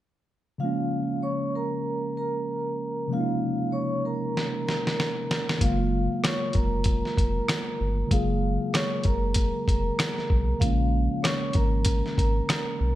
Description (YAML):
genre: hip hop, boom-bap hip-hop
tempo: 96 BPM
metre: 4/4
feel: swing 59% on 16ths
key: Bb minor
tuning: A4 = 443 Hz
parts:
  - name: vibraphone with soft mallets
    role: melody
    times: 0.6-13.0 s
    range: F4 to Db6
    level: -31 LUFS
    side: right 1 dB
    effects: none
  - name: mellow tine electric piano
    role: accompaniment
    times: 0.6-13.0 s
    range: C3 to Ab4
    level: -29 LUFS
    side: equal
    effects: slow stereo tremolo
  - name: dusty soul sampler-style drum kit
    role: drums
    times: 4.4-12.7 s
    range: hi-hat, kick drum, rim click, snare drum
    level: -26 LUFS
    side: equal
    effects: none
  - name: warm sub bass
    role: bass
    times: 5.6-13.0 s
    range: F1 to Cb2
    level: -27 LUFS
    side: equal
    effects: none
room: light reverb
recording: none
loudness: -23 LUFS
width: side -14 dB against mid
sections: 0.6-10.6 A section; 10.6-13.0 B section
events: drum fill 4.4-5.6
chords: 0.6 Bbm7; 5.6 Gbmaj7; 10.6 Bbm7